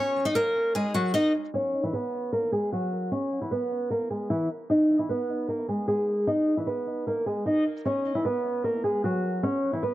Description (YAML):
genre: hip hop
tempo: 152 BPM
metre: 4/4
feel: half-time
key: C# dorian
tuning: A4 = 436 Hz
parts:
  - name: picked steel-string acoustic guitar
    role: solo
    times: 0.0-9.9 s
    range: E3 to D#5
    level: -24 LUFS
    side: equal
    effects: low-pass filter, analog delay
room: moderate spring reverb, RT60 1.6 s, small room reverb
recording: echo-heavy mix, low-pass filter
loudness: -24 LUFS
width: side -15 dB against mid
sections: 0.0-1.5 A section; 1.5-7.9 B section; 7.9-9.9 C section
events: filter sweep 1.5-7.9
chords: 0.0 B (rootless); 1.5 C#m; 4.7 G#m; 7.9 C#m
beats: 0.35 0.75 1.14 | 1.54 1.93 2.33 2.72 | 3.12 3.51 3.91 4.30 | 4.70 5.09 5.49 5.88 | 6.27 6.67 7.06 7.46 | 7.85 8.25 8.64 9.04 | 9.43 9.83